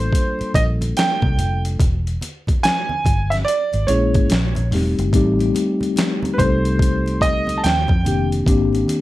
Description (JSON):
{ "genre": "R&B, neo-soul", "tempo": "72 BPM", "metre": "4/4", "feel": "swing 63% on 16ths", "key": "unclear", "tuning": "A4 = 440 Hz", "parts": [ { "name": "clear grand piano", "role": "melody", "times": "0.0-8.3 s", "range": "B4 to A5", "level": "-21 LUFS", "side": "right 3 dB", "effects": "none" }, { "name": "mellow tine electric piano", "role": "accompaniment", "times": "0.0-9.0 s", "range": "Eb3 to A4", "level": "-21 LUFS", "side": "left 3 dB", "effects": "slow stereo tremolo" }, { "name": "vintage muted fingered electric bass", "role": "bass", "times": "0.0-8.8 s", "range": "E1 to F2", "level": "-20 LUFS", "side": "equal", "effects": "none" }, { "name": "boom bap sampler-style drum kit", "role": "drums", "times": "0.1-9.0 s", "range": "hi-hat, kick drum, snare drum", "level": "-20 LUFS", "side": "equal", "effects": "overdrive" }, { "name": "congas", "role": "percussion", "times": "0.4-9.0 s", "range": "none", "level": "-30 LUFS", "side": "right 1 dB", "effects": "none" } ], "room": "light reverb", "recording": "none", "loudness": "-16 LUFS", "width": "side -16 dB against mid", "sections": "0.0-9.0 A section", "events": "none", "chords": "0.0 Gm9; 1.8 E(#11); 4.3 A#dim; 5.1 Am7b5; 7.6 Ebadd9; 8.5 Abmaj9#11", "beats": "0.13 0.96 | 1.79 2.63 3.46 4.29 | 5.13 5.96 6.79 7.63 | 8.46" }